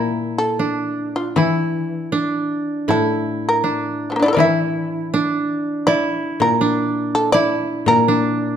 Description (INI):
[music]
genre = japanese traditional, Japanese chamber music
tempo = 81 BPM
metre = 4/4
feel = rubato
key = unclear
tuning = A4 = 440 Hz
[part]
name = shamisen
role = melody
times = 0.0-8.6 s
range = F3 to E5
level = -19 LUFS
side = equal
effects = none
[part]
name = koto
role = second line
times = 0.0-8.6 s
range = D4 to E4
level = -21 LUFS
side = right 3 dB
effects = none
[part]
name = koto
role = accompaniment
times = 0.0-8.6 s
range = A2 to E3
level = -23 LUFS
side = left 5 dB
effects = none
[sound]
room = moderate recital hall reverb, RT60 1.3 s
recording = dark, warm production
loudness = -17 LUFS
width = side -8 dB against mid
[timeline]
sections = 0.0-8.6 A section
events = none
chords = none